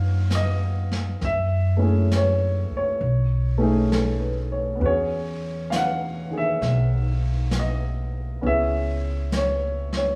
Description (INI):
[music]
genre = jazz ballad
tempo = 66 BPM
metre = 4/4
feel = swing 66% on 8ths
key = unclear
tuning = A4 = 442 Hz
[part]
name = warm upright piano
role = accompaniment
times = 0.0-10.2 s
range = Eb3 to Gb5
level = -27 LUFS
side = equal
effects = none
[part]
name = upright bass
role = bass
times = 0.0-10.2 s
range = B1 to Gb2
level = -26 LUFS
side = equal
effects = none
[part]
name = vintage brush drum kit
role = drums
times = 0.3-10.2 s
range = brushed snare drum, hi-hat, snare drum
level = -35 LUFS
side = equal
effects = none
[sound]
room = moderate large studio reverb, RT60 1.1 s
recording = heard from further back in the room, small room ambience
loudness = -23 LUFS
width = mono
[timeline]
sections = 0.0-10.2 A section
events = none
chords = 0.0 Ebm9; 1.2 Gbm7; 3.0 B13; 4.8 E69; 8.4 Dbm7